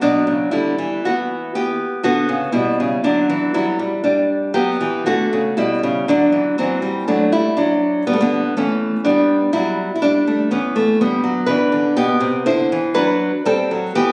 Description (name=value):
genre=classical, baroque-style dance for nylon-string guitar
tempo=60 BPM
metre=4/4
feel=rubato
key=unclear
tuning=A4 = 440 Hz
part: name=nylon-string guitar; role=solo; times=0.0-14.1 s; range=B2 to C5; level=-18 LUFS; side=equal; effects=none
room=moderate recital hall reverb, RT60 1.4 s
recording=recorded on a phone in the room, studio reverb, compression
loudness=-18 LUFS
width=mono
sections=0.0-14.1 A section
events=none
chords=0.0 Bm; 4.0 G; 6.1 D; 8.1 G/D; 12.0 G/B